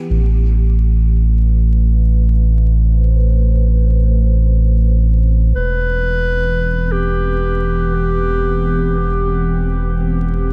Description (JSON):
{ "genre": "ambient", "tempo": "free time", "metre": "none", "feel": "none", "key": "A minor", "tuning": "A4 = 442 Hz", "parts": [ { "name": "warbly tape-like pad", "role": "sustained chords", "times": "0.0-10.5 s", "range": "E3 to C5", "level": "-26 LUFS", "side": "equal", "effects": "chorus, built-in reverb" }, { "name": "warm sub bass", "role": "bass", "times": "0.1-10.5 s", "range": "E1 to A1", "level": "-16 LUFS", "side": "equal", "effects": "none" }, { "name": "mellow clarinet", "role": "melody", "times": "5.6-10.3 s", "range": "G4 to B4", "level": "-22 LUFS", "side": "equal", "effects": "dub echo" } ], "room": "small room ambience", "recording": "vinyl crackle", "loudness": "-15 LUFS", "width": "mono", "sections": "0.1-10.5 A section", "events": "filter sweep on ambient pad 0.1-10.5", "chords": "0.1 Amadd9; 5.6 Em", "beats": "free time" }